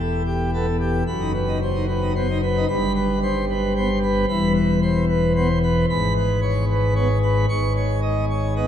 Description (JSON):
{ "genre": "classical, organ toccata", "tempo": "112 BPM", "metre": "3/4", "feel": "straight", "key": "E minor", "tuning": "A4 = 441 Hz", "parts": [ { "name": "pipe organ, plenum", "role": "solo", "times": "0.0-8.7 s", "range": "E1 to C#6", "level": "-18 LUFS", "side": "equal", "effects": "none" } ], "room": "wet cathedral reverb, RT60 5.4 s", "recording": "none", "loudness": "-18 LUFS", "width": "side -9 dB against mid", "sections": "0.0-8.7 A section", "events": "none", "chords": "0.0 Em; 1.1 B/F#; 2.7 Gadd11; 4.3 E5; 5.9 G#madd11; 7.5 C#5/G#" }